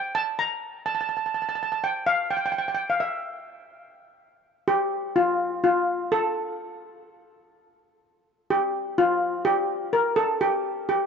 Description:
calypso; 126 BPM; 4/4; swing 54% on 16ths; A4 = 440 Hz
steel pan; solo; 0.0-11.1 s; F4 to Bb5; -23 LUFS; equal
moderate plate reverb, RT60 3.5 s; dark, warm production, nothing above 7.9 kHz; -23 LUFS; side -6 dB against mid
0.0-4.0 A section; 4.0-11.1 B section
| 0.15 0.63 1.11 1.59 | 2.06 2.54 3.02 3.50 | 3.97 4.45 4.92 5.40 | 5.88 6.36 6.83 7.31 | 7.78 8.26 8.74 9.21 | 9.69 10.17 10.65

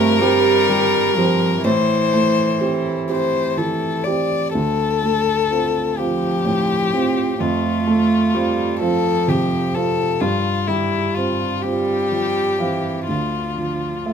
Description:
neoclassical piano and strings; 42 BPM (dotted quarters); 6/8; rubato; D minor; A4 = 440 Hz
warm violin; melody; 0.0-14.1 s; E4 to D5; -20 LUFS; left 7 dB
dark cello; second line; 0.0-14.1 s; D3 to C4; -23 LUFS; right 5 dB
dark upright piano; accompaniment; 0.0-14.1 s; D2 to F5; -20 LUFS; right 3 dB
light reverb; minimal, uncompressed stereo recording; -16 LUFS; side -7 dB against mid
0.0-14.1 A section
0.0 Csus4/G; 1.6 Am7; 4.5 Dm7; 7.4 F; 10.2 Csus4/G; 13.1 Dm
0.20 | 1.64 3.08 | 4.53 5.97 | 7.39 8.79 | 10.20 11.62 | 13.08

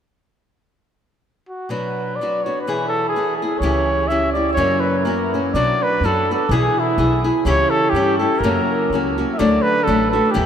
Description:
mexican folk, mariachi; 125 BPM; 2/4; swing 55% on 8ths; B minor; A4 = 440 Hz
mellow trumpet; melody; 1.5-10.5 s; E4 to E5; -19 LUFS; equal
nylon-string guitar; accompaniment; 1.7-10.5 s; F#2 to G#4; -20 LUFS; left 1 dB
upright bass; bass; 3.6-10.5 s; A1 to G2; -23 LUFS; equal
wet cathedral reverb, RT60 6.0 s; in a vast, echoing space; -16 LUFS; side -8 dB against mid
1.7-5.5 A section; 5.5-10.5 B section
0.7 N.C.; 1.7 Bm; 2.7 E/B; 3.6 C#dim; 4.6 F#; 5.5 Bm; 6.5 E/B; 7.4 C#dim; 8.4 F#; 9.4 D
| 0.74 1.22 | 1.70 2.18 | 2.66 3.13 | 3.61 4.09 | 4.57 5.05 | 5.53 6.01 | 6.49 6.97 | 7.45 7.92 | 8.41 8.89 | 9.38 9.86 | 10.34

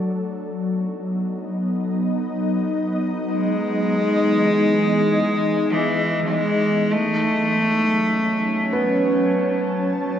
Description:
ambient; free time; E major; A4 = 440 Hz
ethereal airy pad; sustained chords; 0.0-10.2 s; E3 to A5; -21 LUFS; left 1 dB; ensemble chorus, built-in reverb
rich cello; melody; 3.3-9.3 s; E3 to A3; -20 LUFS; equal; diffuse ambient delay
felt-muted upright piano; arpeggios; 8.7-10.2 s; B3; -24 LUFS; right 1 dB; diffuse ambient delay
wet cathedral reverb, RT60 5.6 s; nothing above 7.8 kHz; -18 LUFS; side -9 dB against mid
0.0-10.2 A section
filter sweep on ambient pad 0.0-10.2
0.0 B7; 3.3 Emaj7; 6.9 F#m
free time

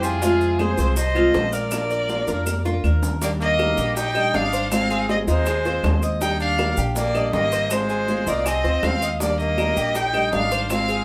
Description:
latin, Cuban son and guajira; 160 BPM; 4/4; straight; Eb major; A4 = 440 Hz
rich violin; melody; 0.0-11.0 s; Ab4 to G5; -26 LUFS; equal
growling trumpet; second line; 0.0-11.0 s; Ab3 to C5; -33 LUFS; equal
nylon-string guitar; accompaniment; 0.0-11.0 s; C3 to G4; -30 LUFS; equal
Cuban tres; arpeggios; 0.0-11.0 s; Eb4 to F5; -28 LUFS; equal
upright bass; bass; 0.0-11.0 s; Ab1 to F2; -28 LUFS; equal
bongos; percussion; 0.0-11.0 s; -33 LUFS; equal
maracas; percussion; 0.0-11.0 s; -38 LUFS; equal
claves; percussion; 0.6-10.9 s; -37 LUFS; equal
moderate studio ambience, RT60 0.5 s; band playing live in one room; -21 LUFS; mono
0.0-3.2 A section; 3.2-11.0 B section
drum fill 2.5-3.2
0.2 Fm; 1.7 Bb; 3.2 Ebmaj9; 4.7 Ab6; 6.2 Ebmaj9; 7.7 Ab6; 9.2 Ebmaj9
| 0.22 0.59 0.97 1.34 | 1.72 2.09 2.47 2.84 | 3.22 3.59 3.97 4.34 | 4.72 5.09 5.46 5.84 | 6.21 6.59 6.96 7.34 | 7.71 8.08 8.46 8.83 | 9.21 9.58 9.95 10.33 | 10.70

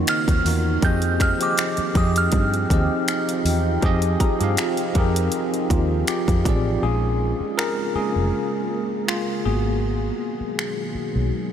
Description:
contemporary R&B; 80 BPM; 4/4; swing 54% on 16ths; Bb phrygian from 6.8 s; A4 = 440 Hz
bell-like tine electric piano; accompaniment; 0.0-11.5 s; Eb3 to F5; -24 LUFS; equal; medium stereo tremolo
deep dark ambient pad; sustained chords; 0.0-11.5 s; Bb2 to G5; -29 LUFS; right 2 dB; chorus, built-in reverb
vintage muted fingered electric bass; bass; 0.0-11.3 s; F1 to G2; -22 LUFS; equal
mallet-like synth pluck; texture; 0.0-5.9 s; Eb5 to Bb5; -44 LUFS; right 2 dB
glassy synth bell; melody; 0.1-6.0 s; D6 to G6; -26 LUFS; right 2 dB; chorus, tremolo, tape echo
trap drum kit; drums; 0.1-10.8 s; finger snaps, hi-hat, kick drum; -25 LUFS; equal; overdrive
moderate huge ambient reverb, RT60 8.1 s; dreamy mix soaked in reverb; -19 LUFS; side -9 dB against mid
0.0-6.8 A section; 6.8-11.5 B section
break 6.8-11.5; tine electric piano solo 6.8-11.5
0.0 Ebm9; 0.8 Fm9; 6.8 Bbm7; 9.4 Abm7
0.07 | 0.82 1.57 2.33 3.08 | 3.83 4.58 5.33 6.08 | 6.83 7.58 8.32 9.07 | 9.82 10.57 11.32

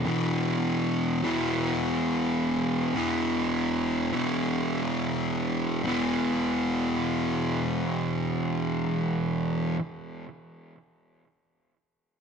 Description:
metal; 83 BPM; 4/4; swing 64% on 8ths; A4 = 440 Hz
fuzz guitar; solo; 0.0-9.8 s; E2 to E3; -25 LUFS; equal; distortion, tape echo
moderate studio reverb, RT60 0.8 s; -25 LUFS; side -6 dB against mid
0.0-5.8 A section; 5.8-8.8 B section
0.0 E5
| 0.05 0.78 1.50 2.22 | 2.95 3.67 4.40 5.12 | 5.85 6.58 7.30 8.03

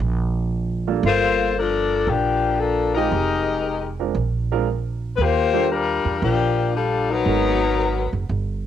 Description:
jazz, big band swing; 115 BPM; 4/4; swing 67% on 8ths; A4 = 440 Hz
upright bass; bass; 0.0-8.7 s; F1 to E2; -24 LUFS; right 3 dB
warm concert grand piano; accompaniment; 0.9-7.6 s; G3 to Bb4; -25 LUFS; right 12 dB; cassette tape
mellow saxophone section; melody; 1.1-8.1 s; F3 to C5; -19 LUFS; left 5 dB
light reverb, studio reverb; home recording on cassette; -19 LUFS; side -10 dB against mid
0.0-8.7 A section
0.0 Dm(b13); 1.0 Gm9; 3.1 Fm9; 4.2 Bb7; 5.2 Ebmaj9; 7.3 Abm9
0.51 | 1.03 1.55 2.07 2.59 | 3.11 3.63 4.15 4.67 | 5.19 5.71 6.23 6.75 | 7.27 7.79 8.31

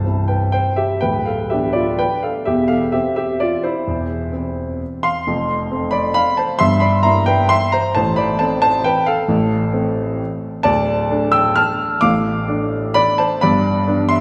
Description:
classical, piano waltz; 122-142 BPM; 3/4; rubato; C major; A4 = 440 Hz
warm baby grand piano; solo; 0.0-14.2 s; C1 to F6; -18 LUFS; equal
wet church reverb, RT60 3.3 s; recorded in a church or concert hall; -18 LUFS; mono
0.0-14.2 A section
0.0 C; 1.0 Bdim/D; 2.5 C/E; 5.3 F; 6.6 Edim/G; 8.0 F/A; 10.7 Dm; 13.4 G
0.07 0.55 | 1.03 1.52 2.00 | 2.48 2.94 3.42 | 3.88 4.33 4.82 | 5.28 5.72 6.17 | 6.62 7.06 7.51 | 7.96 8.40 8.85 | 9.29 9.73 10.20 | 10.65 11.10 11.57 | 12.02 12.47 12.96 | 13.42 13.88

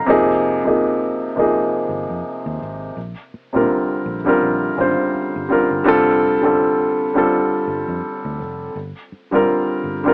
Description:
R&B, neo-soul; 83 BPM; 4/4; swing 58% on 16ths; A4 = 440 Hz
dark upright piano; accompaniment; 0.0-10.1 s; C3 to Bb5; -19 LUFS; equal
vintage muted fingered electric bass; bass; 0.1-10.1 s; F1 to Bb2; -33 LUFS; equal
light reverb; AM radio sound; -19 LUFS; mono
0.1-10.1 A section
0.1 Fm7; 3.0 Bb69; 5.8 F69; 8.7 G7sus4
| 0.07 0.79 1.51 2.23 | 2.96 3.68 4.40 5.13 | 5.85 6.57 7.29 8.02 | 8.74 9.46

